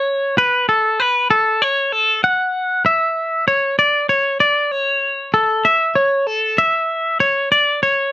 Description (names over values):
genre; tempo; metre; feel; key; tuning
rock; 64 BPM (dotted quarters); 6/8; straight; A major; A4 = 439 Hz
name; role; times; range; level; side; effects
twangy electric guitar; solo; 0.0-8.1 s; A4 to F#5; -14 LUFS; equal; vibrato effect
room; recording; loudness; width
light reverb; dark, warm production; -14 LUFS; side -15 dB against mid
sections
0.0-2.9 A section; 2.9-8.1 B section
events
none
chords
none